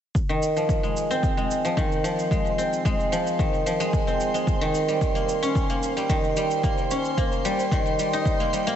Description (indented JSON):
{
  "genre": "organic downtempo",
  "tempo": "111 BPM",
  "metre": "4/4",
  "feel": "straight",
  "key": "F minor",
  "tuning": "A4 = 440 Hz",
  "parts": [
    { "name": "electronic kick drum", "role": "drums", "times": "0.1-8.4 s", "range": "none", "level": "-25 LUFS", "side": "equal", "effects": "overdrive" },
    { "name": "twinkling granular texture", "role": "texture", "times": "1.9-8.8 s", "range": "C5", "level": "-34 LUFS", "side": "right 3 dB", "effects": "built-in reverb" },
    { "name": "shaker", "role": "drums", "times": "0.2-8.8 s", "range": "none", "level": "-40 LUFS", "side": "right 4 dB", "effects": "none" },
    { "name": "guzheng", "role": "arpeggios", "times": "0.3-8.8 s", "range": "Eb3 to Eb4", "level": "-23 LUFS", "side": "equal", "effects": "low-pass filter, tape echo, slapback echo" }
  ],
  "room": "moderate lush hall reverb, RT60 2.7 s",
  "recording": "big arena sound, nothing above 8.0 kHz",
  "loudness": "-21 LUFS",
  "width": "side -9 dB against mid",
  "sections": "0.1-8.8 A section",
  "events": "none",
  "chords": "0.1 Fm7; 4.5 Eb7"
}